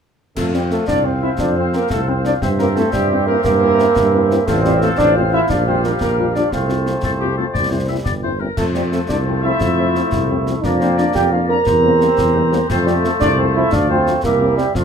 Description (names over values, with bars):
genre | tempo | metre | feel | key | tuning
military-style march for wind band | 117 BPM (dotted quarters) | 6/8 | straight | F major | A4 = 442 Hz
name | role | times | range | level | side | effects
dark trumpet section | melody | 0.4-14.8 s | F4 to Bb5 | -25 LUFS | left 2 dB | none
clear euphonium | second line | 0.4-14.8 s | F3 to Bb4 | -18 LUFS | right 2 dB | none
warm woodwind section | second line | 0.4-14.8 s | G4 to F5 | -25 LUFS | left 5 dB | none
clear trombone section | sustained chords | 0.4-14.8 s | E3 to C4 | -25 LUFS | right 1 dB | none
mellow tuba | bass | 0.4-14.8 s | G1 to G2 | -20 LUFS | right 2 dB | none
concert snare drum, clash cymbals and concert bass drum | drums | 0.4-14.8 s | none | -25 LUFS | left 1 dB | none
mellow French horn section | accompaniment | 0.5-14.6 s | F3 to F4 | -25 LUFS | left 6 dB | none
room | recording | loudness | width
moderate small room reverb, RT60 0.5 s | none | -14 LUFS | side -7 dB against mid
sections
0.4-14.8 A section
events
none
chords
0.4 F5; 2.4 C7/G; 4.5 F/A; 5.5 Gm7/Bb; 6.5 F/C; 7.6 C; 8.6 F; 10.6 Bb/F; 11.7 C7/E; 12.7 F; 13.7 Dm; 14.2 C7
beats
| 0.37 0.88 | 1.40 1.91 | 2.42 2.93 | 3.45 3.96 | 4.47 4.99 | 5.50 6.01 | 6.53 7.04 | 7.55 8.07 | 8.58 9.09 | 9.61 10.12 | 10.63 11.15 | 11.66 12.18 | 12.69 13.21 | 13.72 14.23 | 14.75